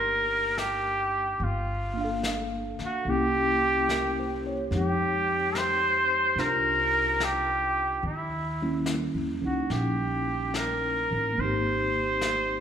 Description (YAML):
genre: jazz ballad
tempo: 72 BPM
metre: 4/4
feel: swing 68% on 8ths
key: C minor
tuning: A4 = 439 Hz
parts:
  - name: clear trumpet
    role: melody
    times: 0.0-12.6 s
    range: Fb4 to C5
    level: -26 LUFS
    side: right 1 dB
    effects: none
  - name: mellow tine electric piano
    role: accompaniment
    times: 0.0-12.6 s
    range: G3 to F5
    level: -31 LUFS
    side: left 1 dB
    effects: medium stereo tremolo
  - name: upright bass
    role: bass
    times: 0.0-12.6 s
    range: G1 to F2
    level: -33 LUFS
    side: equal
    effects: none
  - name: vintage brush drum kit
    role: drums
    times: 0.6-12.6 s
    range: brushed snare drum, hi-hat, snare drum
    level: -38 LUFS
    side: left 3 dB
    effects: none
room: wet recital hall reverb, RT60 1.7 s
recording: recorded in a church or concert hall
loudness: -24 LUFS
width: side -8 dB against mid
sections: 0.0-12.6 A section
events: none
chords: 0.0 Cm9 (rootless); 1.4 Gm9; 3.1 C7b9; 4.7 Fm9; 8.0 Eb7b9; 11.4 Abmaj9